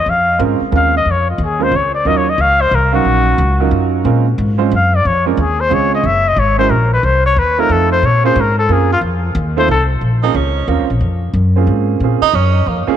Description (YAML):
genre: jazz, small-group swing and bop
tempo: 181 BPM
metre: 3/4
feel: swing 63% on 8ths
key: Bb minor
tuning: A4 = 440 Hz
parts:
  - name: warm trumpet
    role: melody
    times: 0.0-9.8 s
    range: F4 to F5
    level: -15 LUFS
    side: left 3 dB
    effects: tape echo
  - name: upright bass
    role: bass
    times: 0.0-12.9 s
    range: Gb1 to Bb2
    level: -15 LUFS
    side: left 1 dB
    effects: none
  - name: clear grand piano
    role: accompaniment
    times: 0.4-13.0 s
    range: Gb3 to F5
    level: -19 LUFS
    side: right 11 dB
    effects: none
  - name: clear tenor saxophone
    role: second line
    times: 10.2-12.9 s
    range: Bb3 to Eb4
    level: -17 LUFS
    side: right 9 dB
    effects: none
room: light reverb, small room ambience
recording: 1960s-style stereo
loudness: -11 LUFS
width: side -10 dB against mid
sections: 0.0-10.0 A section; 10.0-13.0 A section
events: trumpet solo 0.0-10.0; tenor saxophone solo 10.0-13.0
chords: 0.0 Bbm7; 2.1 Ebm9; 4.1 Bbm7; 6.0 Gb7; 7.0 F7; 8.0 Bbm7; 9.0 F7; 10.0 Bbm7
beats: | 0.07 0.40 0.73 | 1.07 1.40 1.73 | 2.06 2.39 2.73 | 3.06 3.39 3.72 | 4.05 4.38 4.72 | 5.05 5.38 5.71 | 6.04 6.38 6.71 | 7.04 7.37 7.70 | 8.03 8.37 8.70 | 9.03 9.36 9.69 | 10.02 10.35 10.69 | 11.02 11.35 11.68 | 12.01 12.34 12.67